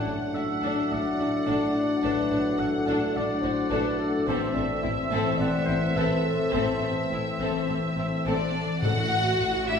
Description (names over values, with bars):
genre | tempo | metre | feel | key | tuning
cinematic, heroic adventure film score | 106 BPM | 4/4 | straight | unclear | A4 = 440 Hz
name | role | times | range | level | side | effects
clear symphonic violin section | melody | 0.0-9.8 s | D5 to F#5 | -33 LUFS | left 1 dB | none
mellow clarinet | second line | 0.0-8.5 s | A4 to E5 | -33 LUFS | left 1 dB | none
rich symphonic violin section | second line | 0.0-9.8 s | D4 to A4 | -34 LUFS | left 3 dB | none
warm oboe | second line | 0.0-8.5 s | D5 to F#5 | -34 LUFS | right 1 dB | none
warm symphonic viola section | accompaniment | 0.0-9.8 s | C4 to A4 | -33 LUFS | equal | none
dark trombone section | sustained chords | 0.0-8.5 s | A2 to F#3 | -35 LUFS | right 2 dB | none
mellow French horn section | sustained chords | 0.0-8.5 s | A3 to D4 | -29 LUFS | left 2 dB | none
concert harp | arpeggios | 0.0-9.8 s | A2 to A5 | -32 LUFS | left 4 dB | none
clear symphonic double bass section | bass | 0.1-9.8 s | A1 | -38 LUFS | right 2 dB | none
rich symphonic cello section | bass | 0.1-9.8 s | A2 | -38 LUFS | right 1 dB | none
timpani | percussion | 4.3-5.1, 8.8-9.6 s | A2 | -31 LUFS | equal | none
room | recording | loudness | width
wet recital hall reverb, RT60 1.7 s | recorded in a church or concert hall | -23 LUFS | side -6 dB against mid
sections
0.0-8.8 A section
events
none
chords
0.0 D/A; 8.8 D/A (rootless)